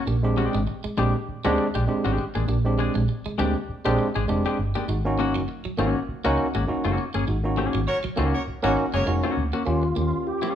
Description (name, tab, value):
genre	funk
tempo	100 BPM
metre	4/4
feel	swing 56% on 16ths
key	unclear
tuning	A4 = 439 Hz
part	semi-hollow electric guitar	accompaniment	0.0-10.6 s	G3 to Ab4	-29 LUFS	left 5 dB	none
part	clean electric guitar	riff	0.0-10.5 s	Gb3 to Db4	-34 LUFS	right 3 dB	none
part	bright tine electric piano	stabs	0.1-10.4 s	Ab3 to G4	-26 LUFS	right 2 dB	none
part	vintage muted fingered electric bass	bass	0.1-10.1 s	F1 to Eb2	-26 LUFS	equal	none
part	warm horn section	second line	7.9-9.1 s	Db4 to Db5	-29 LUFS	right 1 dB	none
part	tonewheel organ	melody	9.7-10.6 s	F4 to G4	-27 LUFS	equal	overdrive, chorus vibrato, slow rotary speaker
room	moderate large studio reverb, RT60 1.2 s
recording	band playing live in one room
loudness	-22 LUFS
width	side -10 dB against mid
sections	0.0-9.7 A section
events	band accent 7.3-9.7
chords	0.1 Bb13; 4.9 Ab9sus4; 9.7 Eb9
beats	| 0.07 0.68 1.28 1.88 | 2.48 3.08 3.69 4.29 | 4.89 5.49 6.08 6.68 | 7.28 7.88 8.47 9.07 | 9.66 10.26